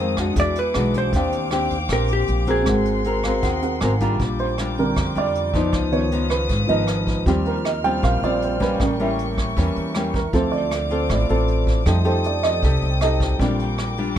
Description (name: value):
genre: bossa nova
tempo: 156 BPM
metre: 4/4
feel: straight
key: Bb major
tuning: A4 = 440 Hz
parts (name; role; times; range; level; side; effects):
- vintage hollow-body jazz guitar; melody; 0.0-3.8 s; G4 to F5; -25 LUFS; right 1 dB; none
- dark baby grand piano; accompaniment; 0.0-14.2 s; D3 to Bb5; -24 LUFS; right 3 dB; none
- nylon-string guitar; accompaniment; 0.0-14.2 s; F2 to Bb4; -24 LUFS; left 2 dB; none
- warm chamber string section; sustained chords; 0.0-14.2 s; Ab4 to F6; -31 LUFS; left 4 dB; none
- upright bass; bass; 0.0-14.2 s; Ab1 to F2; -24 LUFS; equal; none
- vintage brush drum kit; drums; 0.2-14.2 s; hi-hat, kick drum, rim click; -27 LUFS; equal; none
room: little or no reverb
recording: close, detailed microphones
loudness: -18 LUFS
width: side -10 dB against mid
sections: 0.0-4.2 A section; 4.2-14.2 B section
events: grand piano fill 3.0-4.2; grand piano solo 4.2-14.2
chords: 0.4 E9; 1.1 Ebmaj13; 2.7 Ab9; 4.2 Bb6; 5.7 Db9; 7.3 Eb69; 8.8 A7b9; 10.3 Dm7; 11.9 F9; 13.4 Bb6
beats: 0.37 0.75 | 1.13 1.52 1.90 2.28 | 2.67 3.05 3.43 3.81 | 4.20 4.58 4.97 5.35 | 5.73 6.12 6.50 6.88 | 7.27 7.65 8.03 8.42 | 8.80 9.18 9.57 9.95 | 10.33 10.72 11.10 11.48 | 11.87 12.25 12.63 13.02 | 13.40 13.78 14.17